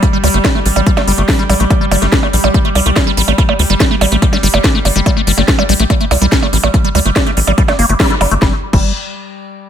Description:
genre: psychedelic trance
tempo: 143 BPM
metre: 4/4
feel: straight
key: G minor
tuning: A4 = 440 Hz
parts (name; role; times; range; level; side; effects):
- overtone-sweeping drone; sustained chords; 0.0-8.5 s; G3; -21 LUFS; right 1 dB; chorus, built-in reverb, sidechain pumping
- liquid acid bass; riff; 0.0-8.9 s; G3 to Bb3; -16 LUFS; moving between left 6 dB and right 4 dB; phaser, auto-pan, sidechain pumping, ping-pong delay
- electronic kick drum; drums; 0.0-8.8 s; none; -13 LUFS; equal; overdrive, small room reverb
- techno drum kit; drums; 0.0-8.8 s; crash cymbal, hi-hat, percussion blips, snare drum; -16 LUFS; right 2 dB; overdrive, small room reverb
- tight sequencer bass; bass; 0.2-8.9 s; G1 to D2; -14 LUFS; equal; none
room: digital ambience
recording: none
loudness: -10 LUFS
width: side -9 dB against mid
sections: 0.0-8.4 A section; 8.4-9.7 B section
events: drop 0.0-8.4; band accent 8.0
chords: 0.0 G5; 8.4 N.C.

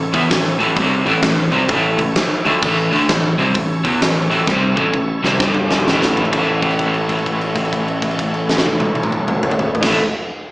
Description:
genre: blues rock power trio and southern rock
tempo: 129 BPM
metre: 4/4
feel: swing 64% on 8ths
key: A mixolydian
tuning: A4 = 440 Hz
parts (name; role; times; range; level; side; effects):
- bright tonewheel organ; sustained chords; 0.0-10.0 s; G3 to D5; -26 LUFS; right 1 dB; overdrive, fast rotary speaker
- crunchy overdriven guitar; riff; 0.0-10.0 s; G2 to E4; -17 LUFS; equal; harmonic tremolo
- picked electric bass; bass; 0.0-10.0 s; G1 to E2; -22 LUFS; equal; none
- huge arena drum kit; drums; 0.1-9.9 s; crash cymbal, hi-hat, kick drum, snare drum, toms; -19 LUFS; equal; none
room: light reverb, studio ambience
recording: live gig heard through the venue's PA, club reverb, small speaker sound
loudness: -14 LUFS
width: side -22 dB against mid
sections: 0.0-6.3 A section; 6.3-10.1 B section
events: drum fill 4.5-6.3; held note 6.3-9.8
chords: 0.0 A; 5.4 G5; 5.9 A

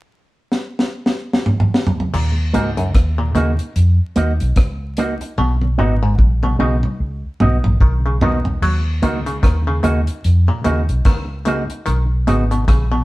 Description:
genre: roots reggae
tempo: 74 BPM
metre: 4/4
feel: swing 59% on 16ths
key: Eb minor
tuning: A4 = 441 Hz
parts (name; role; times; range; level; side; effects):
- deep reggae drum kit; drums; 0.5-12.9 s; crash cymbal, hi-hat, kick drum, rim click, snare drum, toms; -17 LUFS; equal; none
- muted clav; arpeggios; 2.1-13.0 s; Gb2 to Gb3; -23 LUFS; left 1 dB; none
- vintage muted fingered electric bass; bass; 2.1-13.0 s; Ab1 to F2; -17 LUFS; equal; none
- electric guitar with an envelope filter; accompaniment; 2.5-12.4 s; Bb3 to Gb4; -20 LUFS; right 2 dB; none
room: moderate stone room reverb, RT60 0.9 s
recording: band playing live in one room, vinyl crackle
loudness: -15 LUFS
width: side -19 dB against mid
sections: 0.0-2.1 A section; 2.1-8.6 B section; 8.6-13.0 C section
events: drum fill 0.5-2.1, 5.4-8.6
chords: 0.0 N.C.; 2.1 Ebm; 5.4 B; 8.6 Ebm; 11.9 B

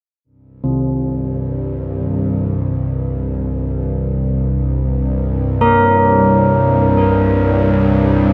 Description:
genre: dark ambient drone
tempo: free time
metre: none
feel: none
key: unclear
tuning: A4 = 440 Hz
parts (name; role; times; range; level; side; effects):
- bowed-like drone; drone; 0.8-8.3 s; C2 to G2; -18 LUFS; equal; built-in reverb
- carillon bells; arpeggios; 0.6-8.3 s; C3 to Bb4; -20 LUFS; equal; tape echo
room: wet spring reverb, RT60 2.8 s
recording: echo-heavy mix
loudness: -16 LUFS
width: mono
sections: 0.2-8.3 A section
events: none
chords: 0.2 Gmadd11/C

